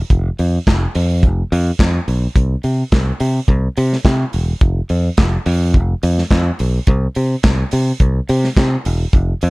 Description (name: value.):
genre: disco.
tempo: 106 BPM.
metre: 4/4.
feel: straight.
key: unclear.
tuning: A4 = 439 Hz.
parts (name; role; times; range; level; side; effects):
fingered electric bass; bass; 0.1-9.5 s; E1 to C3; -15 LUFS; equal; none.
warm soul drum kit; drums; 0.1-9.5 s; handclaps, hi-hat, kick drum, snare drum; -16 LUFS; equal; none.
room: little or no reverb.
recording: none.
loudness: -13 LUFS.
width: side -25 dB against mid.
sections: 0.0-9.5 A section.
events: none.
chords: none.